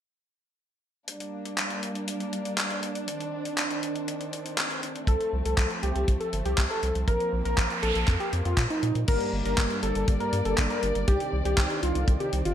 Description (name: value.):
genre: italo disco.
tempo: 120 BPM.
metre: 4/4.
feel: straight.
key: unclear.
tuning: A4 = 443 Hz.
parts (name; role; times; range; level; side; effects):
dark studio string section; sustained chords; 1.1-12.5 s; Eb3 to D5; -33 LUFS; right 1 dB; none.
gated 80s digital drum machine; drums; 1.1-12.5 s; crash cymbal, handclaps, hi-hat; -31 LUFS; left 1 dB; gated reverb, overdrive.
wide unison lead; melody; 5.1-12.5 s; Eb4 to Bb4; -29 LUFS; equal; digital delay.
round analog bass; bass; 5.1-12.5 s; G1 to Bb2; -28 LUFS; equal; none.
kick drum; drums; 5.1-12.2 s; none; -25 LUFS; equal; none.
noise sweep; sound effects; 7.4-9.1 s; none; -35 LUFS; right 4 dB; none.
mellow synth brass; stabs; 9.1-12.5 s; G2 to C5; -34 LUFS; left 2 dB; chorus, cassette tape.
room: moderate plate reverb, RT60 1.3 s, small room ambience.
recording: bright 1980s-style digital production.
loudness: -24 LUFS.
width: side -10 dB against mid.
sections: 1.1-9.1 A section; 9.1-12.5 B section.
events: noise sweep 7.4-9.1.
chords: 1.1 Gm; 3.1 Cmadd9; 5.1 F/C; 7.1 Bbsus2; 9.1 Gm; 11.1 Cmadd9.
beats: | 1.08 1.58 2.08 2.58 | 3.08 3.58 4.08 4.58 | 5.08 5.58 6.08 6.58 | 7.08 7.58 8.08 8.58 | 9.08 9.58 10.08 10.58 | 11.08 11.58 12.08.